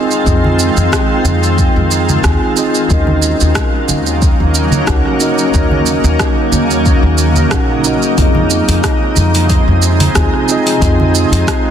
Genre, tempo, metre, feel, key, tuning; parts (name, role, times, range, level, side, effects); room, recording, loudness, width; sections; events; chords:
sunset chillout; 91 BPM; 4/4; swing 54% on 16ths; A4 = 441 Hz
mellow tine electric piano; accompaniment; 0.0-11.7 s; C4 to Ab5; -17 LUFS; equal; auto-pan, vintage 12-bit sampler grit, low-pass filter, ping-pong delay
shimmering ambient pad; sustained chords; 0.0-11.7 s; C3 to F4; -16 LUFS; equal; chorus, built-in reverb
deep house drum kit; drums; 0.1-11.6 s; hi-hat, rim click, shaker; -19 LUFS; right 2 dB; soft clipping on snare
upright bass; bass; 0.3-11.4 s; Bb1 to F2; -14 LUFS; equal
electronic kick drum; drums; 0.3-11.6 s; -15 LUFS; equal
congas; percussion; 0.4-11.1 s; -20 LUFS; right 1 dB
light reverb, digital ambience; dense, heavily limited modern master; -10 LUFS; side -9 dB against mid
0.0-11.7 A section
0.0 Fm7; 2.9 Ebm7; 8.2 Fm7